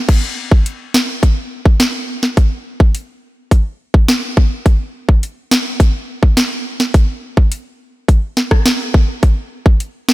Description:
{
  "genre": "dancehall",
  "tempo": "105 BPM",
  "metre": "4/4",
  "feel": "straight",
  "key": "none",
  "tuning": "none",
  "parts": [
    { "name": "island pop drum kit", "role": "drums", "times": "0.1-10.1 s", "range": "crash cymbal, hi-hat, kick drum, rim click, snare drum", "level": "-11 LUFS", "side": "equal", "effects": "none" }
  ],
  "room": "digital ambience",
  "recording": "none",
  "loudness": "-12 LUFS",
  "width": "side -19 dB against mid",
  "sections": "0.1-10.1 A section",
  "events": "none",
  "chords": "none"
}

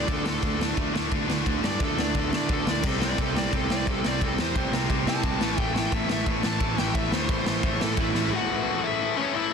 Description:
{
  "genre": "punk rock",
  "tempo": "175 BPM",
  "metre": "4/4",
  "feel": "straight",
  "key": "unclear",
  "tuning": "A4 = 439 Hz",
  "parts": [
    { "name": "bluesy overdriven lead guitar", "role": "melody", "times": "0.0-9.5 s", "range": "C#4 to A5", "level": "-32 LUFS", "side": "left 1 dB", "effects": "distortion, tape echo" },
    { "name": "distorted electric guitar", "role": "riff", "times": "0.0-8.3 s", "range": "A2 to D4", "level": "-30 LUFS", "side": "right 15 dB", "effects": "distortion" },
    { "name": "tight distorted guitar", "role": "riff", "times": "0.0-9.5 s", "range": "A2 to D4", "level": "-30 LUFS", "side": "left 18 dB", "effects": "distortion" },
    { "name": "picked electric bass", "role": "bass", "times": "0.0-8.3 s", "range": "A1 to D3", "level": "-31 LUFS", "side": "equal", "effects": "none" },
    { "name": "raw garage drum kit", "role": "drums", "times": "0.1-8.2 s", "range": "crash cymbal, kick drum, ride cymbal, snare drum", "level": "-27 LUFS", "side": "equal", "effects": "none" }
  ],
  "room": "little or no reverb",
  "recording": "dense, heavily limited modern master",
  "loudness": "-23 LUFS",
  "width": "side -6 dB against mid",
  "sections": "0.0-8.3 A section; 8.3-9.5 B section",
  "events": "lead electric guitar solo 0.0-8.3; drum fill 8.1",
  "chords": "0.0 D5; 2.8 C5; 5.4 A5; 8.3 A"
}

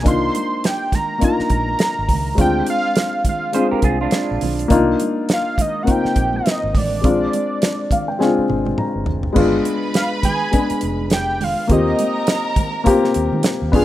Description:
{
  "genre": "lush 1970s-style soul",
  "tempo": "103 BPM",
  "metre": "4/4",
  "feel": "swing 58% on 16ths",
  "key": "C minor",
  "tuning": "A4 = 440 Hz",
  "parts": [
    { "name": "fat analog lead", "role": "melody", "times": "0.0-12.8 s", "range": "D5 to C6", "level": "-22 LUFS", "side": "right 1 dB", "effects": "none" },
    { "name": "dark baby grand piano", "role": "accompaniment", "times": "0.0-13.8 s", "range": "Ab3 to Bb5", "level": "-19 LUFS", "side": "left 3 dB", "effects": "none" },
    { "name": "vintage muted fingered electric bass", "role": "bass", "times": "0.0-13.8 s", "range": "F1 to Eb3", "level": "-24 LUFS", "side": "right 1 dB", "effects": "none" },
    { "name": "damped 70s drum kit", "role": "drums", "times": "0.1-13.8 s", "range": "crash cymbal, hi-hat, kick drum, snare drum, toms", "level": "-20 LUFS", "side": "right 1 dB", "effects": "none" },
    { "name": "congas", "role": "percussion", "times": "0.1-13.8 s", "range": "none", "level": "-30 LUFS", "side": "right 7 dB", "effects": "none" },
    { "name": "electric guitar through a small old amp", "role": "riff", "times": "3.5-4.7 s", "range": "D4 to C5", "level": "-23 LUFS", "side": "right 6 dB", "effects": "analog chorus" },
    { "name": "warm studio violin section", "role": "second line", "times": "9.4-13.8 s", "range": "Bb4 to F6", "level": "-27 LUFS", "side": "right 1 dB", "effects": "none" }
  ],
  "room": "light reverb, studio reverb",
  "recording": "rough home demo mix",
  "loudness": "-16 LUFS",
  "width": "side -14 dB against mid",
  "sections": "0.0-9.4 A section; 9.4-13.8 B section",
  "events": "grand piano fill 7.6-9.4; drum fill 8.2-9.4",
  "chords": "0.1 Cm11; 2.4 Dm7b5; 4.7 Cm11; 7.0 Bb7; 9.4 G7b9; 11.7 Eb6"
}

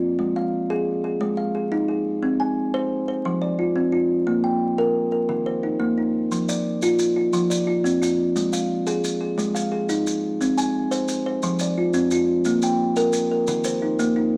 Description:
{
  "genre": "southern african traditional, mbira-style interlocking cycle",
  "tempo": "117 BPM (dotted quarters)",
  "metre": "12/8",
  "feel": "straight",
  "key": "unclear",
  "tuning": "A4 = 442 Hz",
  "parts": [
    { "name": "kalimba", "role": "arpeggios", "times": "0.0-14.4 s", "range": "Eb3 to Ab5", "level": "-23 LUFS", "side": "equal", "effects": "none" },
    { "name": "maracas", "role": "percussion", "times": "6.3-14.2 s", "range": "none", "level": "-36 LUFS", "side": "equal", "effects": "none" }
  ],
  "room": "moderate large studio reverb, RT60 1.0 s",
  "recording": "vinyl crackle",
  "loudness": "-23 LUFS",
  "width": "mono",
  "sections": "0.0-14.4 A section",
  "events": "none",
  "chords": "0.2 Ab5; 2.2 Ab/C; 3.2 F5; 4.3 Bb5; 5.3 Eb5; 6.3 F5; 8.4 Ab5; 10.4 Ab/C; 11.4 F5; 12.5 Bb5; 13.5 Eb5"
}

